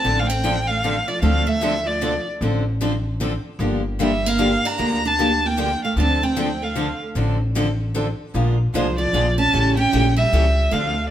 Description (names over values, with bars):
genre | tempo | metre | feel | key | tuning
acoustic string swing (jazz manouche) | 152 BPM | 3/4 | swing 62% on 8ths | D minor | A4 = 441 Hz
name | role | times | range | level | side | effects
warm violin | melody | 0.0-11.1 s | C5 to Bb5 | -22 LUFS | equal | none
picked steel-string acoustic guitar | second line | 0.0-11.1 s | F3 to D4 | -25 LUFS | right 4 dB | none
picked steel-string acoustic guitar | accompaniment | 0.0-10.9 s | C#3 to Bb4 | -26 LUFS | left 4 dB | none
picked steel-string acoustic guitar | accompaniment | 0.0-10.9 s | D3 to A4 | -29 LUFS | right 5 dB | none
upright bass | bass | 0.0-11.1 s | G1 to D2 | -22 LUFS | equal | none
room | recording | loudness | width
moderate stone room reverb, RT60 1.4 s | band playing live in one room | -18 LUFS | side -11 dB against mid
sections
0.0-11.1 A section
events
none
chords
0.0 Dm7; 3.6 Gm7; 6.0 Dm7; 8.3 Bb7; 9.5 A7